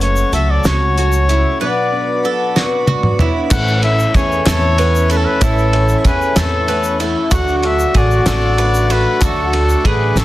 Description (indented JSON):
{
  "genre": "indie folk with a building arrangement",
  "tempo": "63 BPM (dotted quarters)",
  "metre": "6/8",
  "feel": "straight",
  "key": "A major",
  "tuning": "A4 = 437 Hz",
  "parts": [
    { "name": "clear trumpet", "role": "melody", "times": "0.0-10.2 s", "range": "A4 to F#5", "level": "-19 LUFS", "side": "left 2 dB", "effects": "none" },
    { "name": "bright upright piano", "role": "accompaniment", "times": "0.0-10.2 s", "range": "F#1 to F#5", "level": "-27 LUFS", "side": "right 5 dB", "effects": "none" },
    { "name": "picked twelve-string acoustic guitar", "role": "accompaniment", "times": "0.0-10.2 s", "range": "F#2 to F#4", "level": "-23 LUFS", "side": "left 3 dB", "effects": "none" },
    { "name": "pedal harmonium", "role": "sustained chords", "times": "0.0-10.2 s", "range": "A3 to B5", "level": "-28 LUFS", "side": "left 1 dB", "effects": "none" },
    { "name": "bowl-back mandolin", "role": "arpeggios", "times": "0.0-10.2 s", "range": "E4 to B4", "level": "-22 LUFS", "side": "right 6 dB", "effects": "none" },
    { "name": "upright bass", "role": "bass", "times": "0.0-10.2 s", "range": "F#1 to E2", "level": "-16 LUFS", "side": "equal", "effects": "none" },
    { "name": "cloth-damped thuddy drum kit", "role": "drums", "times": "0.0-10.2 s", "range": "crash cymbal, hi-hat, kick drum, ride cymbal, snare drum, toms", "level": "-18 LUFS", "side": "equal", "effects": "none" },
    { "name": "tube shaker", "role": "percussion", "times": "0.0-10.2 s", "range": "none", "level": "-33 LUFS", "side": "left 4 dB", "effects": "none" },
    { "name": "warm trombone", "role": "second line", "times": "3.5-10.2 s", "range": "C#4 to F#4", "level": "-21 LUFS", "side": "left 2 dB", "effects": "none" },
    { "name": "group handclap", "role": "percussion", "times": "3.5-10.2 s", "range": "none", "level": "-25 LUFS", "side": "left 3 dB", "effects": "none" }
  ],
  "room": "light reverb, small room ambience",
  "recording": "dense, heavily limited modern master",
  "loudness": "-12 LUFS",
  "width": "side -16 dB against mid",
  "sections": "0.0-3.5 A section; 3.5-10.2 B section",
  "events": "drum fill 2.6-3.5",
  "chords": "0.0 F#m; 1.6 Bm; 3.5 A; 7.3 D",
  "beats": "0.65 | 1.60 2.56 | 3.51 4.46 | 5.42 6.37 | 7.32 8.27 | 9.22 10.16"
}